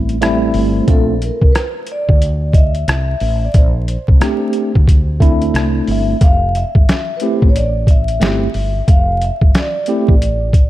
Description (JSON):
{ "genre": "hip hop, jazz-hop", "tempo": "90 BPM", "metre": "4/4", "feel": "swing 62% on 16ths", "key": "F major", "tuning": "A4 = 443 Hz", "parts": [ { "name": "bright tine electric piano", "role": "accompaniment", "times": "0.0-10.1 s", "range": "G3 to G4", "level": "-17 LUFS", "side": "right 1 dB", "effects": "medium stereo tremolo" }, { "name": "woody fretless electric bass", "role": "bass", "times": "0.0-10.7 s", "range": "F1 to D2", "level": "-18 LUFS", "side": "equal", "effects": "none" }, { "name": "boom bap sampler-style drum kit", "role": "drums", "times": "0.1-10.7 s", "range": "hi-hat, kick drum, rim click, snare drum", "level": "-12 LUFS", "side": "equal", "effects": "none" }, { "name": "vibraphone with soft mallets", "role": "melody", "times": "0.6-10.7 s", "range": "A4 to F5", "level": "-22 LUFS", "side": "equal", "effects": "slapback echo" } ], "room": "little or no reverb", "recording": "dark, warm production, vinyl crackle", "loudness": "-11 LUFS", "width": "side -15 dB against mid", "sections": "0.0-10.7 A section", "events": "none", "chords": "0.0 Fmaj9 (rootless); 0.9 Bbmaj9; 6.2 Fmaj9", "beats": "0.21 | 0.88 1.54 2.21 2.88 | 3.54 4.21 4.88 5.54 | 6.21 6.88 7.54 8.21 | 8.88 9.54 10.21" }